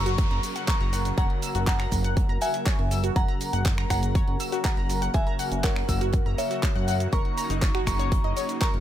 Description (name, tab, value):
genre	progressive house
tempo	121 BPM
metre	4/4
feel	straight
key	F# mixolydian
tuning	A4 = 442 Hz
part	glassy synth bell	melody	0.0-8.8 s	A#4 to C#6	-31 LUFS	equal	chorus, tremolo, tape echo
part	filtered supersaw swell	sustained chords	0.0-8.8 s	C#3 to A#4	-33 LUFS	equal	sidechain pumping
part	fat analog bass	bass	0.0-8.8 s	F#1 to F#2	-28 LUFS	equal	sidechain pumping
part	downlifter	sound effects	0.0-3.2 s	none	-40 LUFS	equal	none
part	analog pluck	arpeggios	0.1-8.7 s	D#4 to E6	-33 LUFS	left 1 dB	chorus, sidechain pumping, tape echo
part	house drum kit	drums	0.1-8.8 s	finger snaps, handclaps, hi-hat, shaker	-34 LUFS	right 1 dB	none
part	electronic kick drum	drums	0.2-8.7 s	none	-25 LUFS	equal	overdrive
part	modern studio drum kit	drums	0.2-8.7 s	hi-hat, snare drum	-43 LUFS	right 3 dB	none
room	digital ambience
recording	none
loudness	-22 LUFS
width	side -11 dB against mid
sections	0.0-8.8 A section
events	none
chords	0.0 F#; 7.1 D#m7/F#